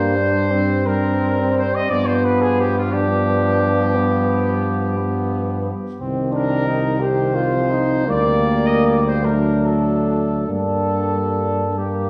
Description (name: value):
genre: classical, hymn-like piece for brass band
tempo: 45-59 BPM (dotted quarters)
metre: 12/8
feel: rubato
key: unclear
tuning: A4 = 440 Hz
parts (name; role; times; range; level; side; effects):
- mellow trumpet section; melody; 0.0-12.1 s; F4 to Eb5; -26 LUFS; equal; none
- mellow flugelhorn; second line; 0.0-12.1 s; Bb3 to G4; -25 LUFS; equal; none
- bright trombone; accompaniment; 0.0-12.1 s; Eb3 to G3; -30 LUFS; equal; none
- warm euphonium; accompaniment; 0.0-12.1 s; A3 to D4; -26 LUFS; equal; none
- mellow tuba; bass; 0.0-12.1 s; C2 to G2; -24 LUFS; equal; none
room: wet recital hall reverb, RT60 1.5 s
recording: recorded in a church or concert hall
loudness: -19 LUFS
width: mono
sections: 0.0-12.1 A section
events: none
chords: 0.0 Gm; 1.9 G7; 6.0 Cm; 8.1 Gm/D; 9.2 D; 10.5 Gm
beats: 0.85 | 1.89 2.91 3.94 4.97 | 6.00 7.03 8.08 9.23 | 10.48 11.77